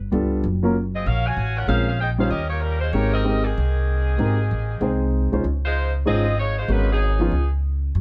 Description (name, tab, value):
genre	jazz, big band swing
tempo	192 BPM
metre	4/4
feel	swing 63% on 8ths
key	Ab major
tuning	A4 = 439 Hz
part	upright bass	bass	0.0-8.0 s	Gb1 to Gb2	-24 LUFS	equal	none
part	warm grand piano	accompaniment	0.1-7.3 s	F3 to G5	-26 LUFS	equal	none
part	bright saxophone section	melody	0.9-7.5 s	Eb3 to Ab5	-28 LUFS	equal	none
room	light reverb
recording	none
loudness	-22 LUFS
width	mono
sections	0.0-5.4 A section; 5.4-8.0 B section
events	none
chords	0.4 Gbmaj7; 1.7 Bbm9; 2.3 Eb9; 2.9 Abmaj9; 5.4 Dbmaj9; 6.7 Abm11; 7.3 Dbsus2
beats	0.12 | 0.43 0.75 1.06 1.37 | 1.69 2.00 2.31 2.63 | 2.94 3.25 3.56 3.88 | 4.19 4.50 4.82 5.13 | 5.44 5.75 6.06 6.38 | 6.69 7.00 7.31 7.62 | 7.94